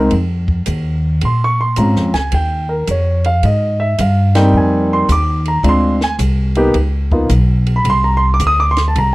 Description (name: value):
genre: jazz, small-group swing and bop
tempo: 108 BPM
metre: 4/4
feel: swing 67% on 8ths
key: unclear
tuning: A4 = 439 Hz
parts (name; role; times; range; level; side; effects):
- warm concert grand piano; accompaniment; 0.0-9.1 s; G3 to Eb6; -15 LUFS; equal; none
- upright bass; bass; 0.0-9.1 s; Cb2 to Bb2; -14 LUFS; equal; none
- compact cocktail drum kit; drums; 0.1-9.1 s; hi-hat, kick drum, ride cymbal, snare drum; -26 LUFS; right 1 dB; none
room: studio reverb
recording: dry, close 1970s-style studio recording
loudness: -12 LUFS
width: side -20 dB against mid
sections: 0.0-9.1 A section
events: none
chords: 0.0 F7(no3); 1.2 Bbm9; 2.3 Ebsus2; 3.4 Abmaj7; 5.6 Dm7b5; 6.8 Db13; 7.9 N.C.